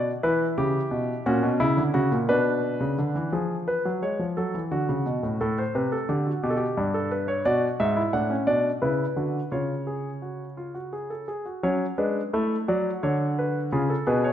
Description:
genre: classical, baroque-style 3-part fugue for grand piano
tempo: 58 BPM (dotted quarters)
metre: 6/8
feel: straight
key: F# minor from 7.5 s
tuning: A4 = 440 Hz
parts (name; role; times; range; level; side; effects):
- warm concert grand piano; solo; 0.0-14.3 s; G2 to F#5; -23 LUFS; equal; none
room: moderate recital hall reverb, RT60 1.7 s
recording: none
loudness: -23 LUFS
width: side -10 dB against mid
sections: 0.0-3.3 A section; 3.3-11.6 B section; 11.6-14.3 C section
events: none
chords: 0.2 C#m7b5; 1.3 F#7/A#; 2.3 Bm; 3.3 C#7/E#; 4.4 F#m; 5.4 D7/A; 6.4 G; 7.5 Bm; 9.5 C#; 11.6 F#m; 12.7 Dmaj7; 13.7 C#7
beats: 0.23 | 1.25 2.28 | 3.33 4.37 | 5.40 6.43 | 7.45 8.48 | 9.52 10.58 | 11.64 12.68 | 13.71

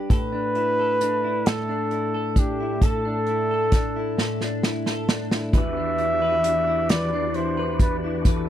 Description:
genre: six-eight pop ballad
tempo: 44 BPM (dotted quarters)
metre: 6/8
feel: straight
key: unclear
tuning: A4 = 440 Hz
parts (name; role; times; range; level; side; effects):
- direct-recorded clean electric guitar; accompaniment; 0.0-8.5 s; A2 to B4; -26 LUFS; left 1 dB; double-tracked left and right
- breathy flugelhorn; melody; 0.1-8.5 s; G4 to E5; -24 LUFS; right 1 dB; none
- unplugged drum kit; drums; 0.1-8.5 s; hi-hat, kick drum, snare drum; -21 LUFS; equal; none
- bright tonewheel organ; sustained chords; 5.5-8.5 s; E2 to G4; -29 LUFS; equal; chorus vibrato, fast rotary speaker
room: small room ambience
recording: dry, close 1970s-style studio recording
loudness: -20 LUFS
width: side -11 dB against mid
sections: 0.0-8.5 A section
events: drum fill 4.2-5.5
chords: 0.1 Dsus2/A; 5.5 Em7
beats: | 0.10 1.46 | 2.82 4.17 | 5.53 6.89 | 8.25

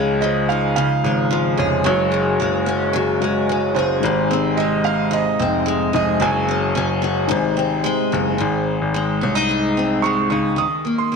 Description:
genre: pop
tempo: 110 BPM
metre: 4/4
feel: straight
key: unclear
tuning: A4 = 440 Hz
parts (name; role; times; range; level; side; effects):
- clear upright piano; melody; 0.0-11.2 s; C5 to Eb6; -23 LUFS; right 10 dB; none
- felt-muted upright piano; accompaniment; 0.0-8.4 s; Ab3 to Eb5; -29 LUFS; left 12 dB; none
- picked acoustic archtop guitar; accompaniment; 0.0-11.2 s; Ab2 to Ab4; -19 LUFS; left 1 dB; double-tracked left and right
- hand-pumped harmonium; sustained chords; 0.0-8.4 s; C3 to Gb4; -29 LUFS; left 2 dB; none
- clear concert grand piano; bass; 0.0-10.6 s; F1 to Db2; -23 LUFS; left 2 dB; none
room: moderate plate reverb, RT60 2.8 s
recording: 1960s-style stereo with parts hard left and right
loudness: -16 LUFS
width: side -5 dB against mid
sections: 0.0-8.4 A section; 8.4-10.6 B section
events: none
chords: 0.0 Dbadd9; 1.9 Gbsus2; 4.0 Ab; 6.2 Gbsus2; 7.3 Ab; 10.6 Eb5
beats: 0.22 0.77 1.31 | 1.85 2.40 2.94 3.48 | 4.03 4.57 5.12 5.66 | 6.21 6.75 7.30 7.84 | 8.39 8.94 9.48 10.03 | 10.58 11.13

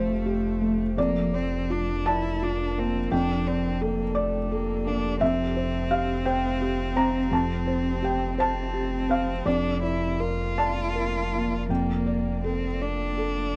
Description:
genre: neoclassical piano and strings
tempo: 53-58 BPM (dotted quarters)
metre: 6/8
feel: rubato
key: F major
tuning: A4 = 438 Hz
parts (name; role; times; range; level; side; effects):
- rich cello; second line; 0.0-13.6 s; A3 to F4; -32 LUFS; equal; none
- felt-muted upright piano; accompaniment; 0.0-13.6 s; F2 to Bb5; -29 LUFS; equal; none
- ethereal airy pad; sustained chords; 0.0-13.6 s; F3 to D5; -39 LUFS; equal; none
- warm sub bass; bass; 0.0-13.6 s; F1; -34 LUFS; equal; none
room: light reverb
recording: dry, close 1970s-style studio recording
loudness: -26 LUFS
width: mono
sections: 0.0-13.6 A section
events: none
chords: 0.0 Fadd9; 1.0 Bb/F; 3.1 Gmadd9/F; 5.2 Fadd9; 9.5 Bb/F; 11.7 Gmadd9/F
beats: | 0.97 2.06 | 3.12 4.16 | 5.21 6.26 | 7.32 8.39 | 9.46 10.58 | 11.69 12.81

